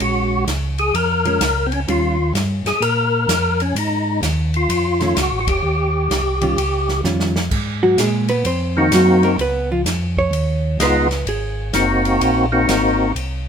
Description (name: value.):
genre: soul jazz organ trio.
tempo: 128 BPM.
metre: 4/4.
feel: swing 66% on 8ths.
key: Ab mixolydian.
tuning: A4 = 439 Hz.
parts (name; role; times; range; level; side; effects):
percussive tonewheel organ; melody; 0.0-13.1 s; Ab3 to Bb4; -18 LUFS; left 1 dB; slow rotary speaker, overdrive, chorus vibrato.
hollow-body jazz guitar; accompaniment; 0.0-2.2, 5.0-11.7 s; Eb3 to Db5; -19 LUFS; right 2 dB; none.
mellow tonewheel organ; bass; 0.0-13.5 s; F1 to Bb2; -21 LUFS; equal; slow rotary speaker.
open jazz drum kit; drums; 0.0-13.3 s; crash cymbal, hi-hat, kick drum, ride cymbal, snare drum; -25 LUFS; equal; none.
room: light reverb.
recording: minimal, uncompressed stereo recording.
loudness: -15 LUFS.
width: side -7 dB against mid.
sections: 0.0-7.5 A section; 7.5-13.5 B section.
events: band accent 5.4; drum fill 7.0-7.5; hollow-body jazz guitar solo 7.5-13.5.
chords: 0.0 Bbm7; 1.9 Eb9; 3.8 Ab5; 4.7 Faug7; 5.6 Eb9; 7.5 Ab9; 9.4 Db9; 11.3 Ab9.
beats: | 0.00 0.47 0.94 1.41 | 1.88 2.35 2.82 3.29 | 3.75 4.22 4.69 5.16 | 5.63 6.10 6.57 7.04 | 7.51 7.98 8.45 8.92 | 9.39 9.86 10.33 10.80 | 11.27 11.74 12.21 12.68 | 13.15.